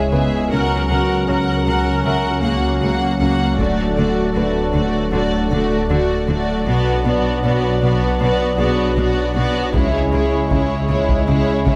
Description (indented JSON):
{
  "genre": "cinematic, hybrid orchestral and electronic film score",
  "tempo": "78 BPM",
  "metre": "4/4",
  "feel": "straight",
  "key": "unclear",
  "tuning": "A4 = 440 Hz",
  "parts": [
    { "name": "warm symphonic violin section", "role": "melody", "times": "0.0-11.8 s", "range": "C#5 to F#5", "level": "-28 LUFS", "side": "equal", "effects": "none" },
    { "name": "warm symphonic violin section", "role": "second line", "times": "0.0-11.8 s", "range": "E4 to G#4", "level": "-28 LUFS", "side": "equal", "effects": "none" },
    { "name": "rich symphonic viola section", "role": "accompaniment", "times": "0.0-11.8 s", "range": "G#3 to A#4", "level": "-25 LUFS", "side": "equal", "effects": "none" },
    { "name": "warm analog pad", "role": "sustained chords", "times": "0.0-11.8 s", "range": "F#3 to A#5", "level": "-24 LUFS", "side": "equal", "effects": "chorus" },
    { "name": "detuned saw bass", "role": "bass", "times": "0.0-11.8 s", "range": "D1 to C#2", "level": "-25 LUFS", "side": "equal", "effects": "none" },
    { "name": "sub drop", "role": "sound effects", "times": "0.0-0.5 s", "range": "none", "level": "-41 LUFS", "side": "equal", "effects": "none" },
    { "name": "felt-muted upright piano", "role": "texture", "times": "0.0-11.8 s", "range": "B3 to E5", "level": "-33 LUFS", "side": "equal", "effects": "none" },
    { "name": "rich symphonic cello section", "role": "bass", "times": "0.1-11.7 s", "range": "B2 to D3", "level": "-28 LUFS", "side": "equal", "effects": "none" },
    { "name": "warm symphonic double bass section", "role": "bass", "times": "0.1-11.7 s", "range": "B1 to D2", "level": "-27 LUFS", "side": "equal", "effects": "none" },
    { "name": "solo taiko drums", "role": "drums", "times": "3.6-5.1, 9.7-11.8 s", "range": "none", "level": "-24 LUFS", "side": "equal", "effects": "none" }
  ],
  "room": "moderate scoring stage reverb, RT60 1.7 s",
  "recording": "none",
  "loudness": "-18 LUFS",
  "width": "mono",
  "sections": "0.0-11.8 A section",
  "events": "impact 0.0-0.5",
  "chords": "0.0 C#m; 0.5 F#/C#; 3.6 D; 6.7 Bm; 9.7 C#m",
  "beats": "| 0.51 1.28 2.05 2.82 | 3.58 4.36 5.12 5.89 | 6.66 7.43 8.20 8.97 | 9.74 10.51 11.28"
}